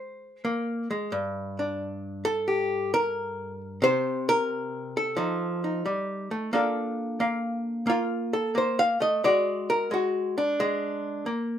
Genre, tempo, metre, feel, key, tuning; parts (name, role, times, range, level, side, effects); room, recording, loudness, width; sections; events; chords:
solo jazz; 89 BPM; 4/4; swing 68% on 8ths; A4 = 440 Hz
archtop guitar, miked and amplified; solo; 0.0-11.6 s; G2 to F5; -25 LUFS; equal
moderate studio ambience, RT60 0.5 s; minimal, uncompressed stereo recording; -25 LUFS; side -9 dB against mid
0.0-6.5 A section; 6.5-11.6 B section
hollow-body jazz guitar solo 6.5-11.6
0.0 Abadd9; 1.1 Gmadd9; 3.8 N.C.; 5.2 F7; 6.5 Bbmaj7; 9.2 Bbaug7/Ab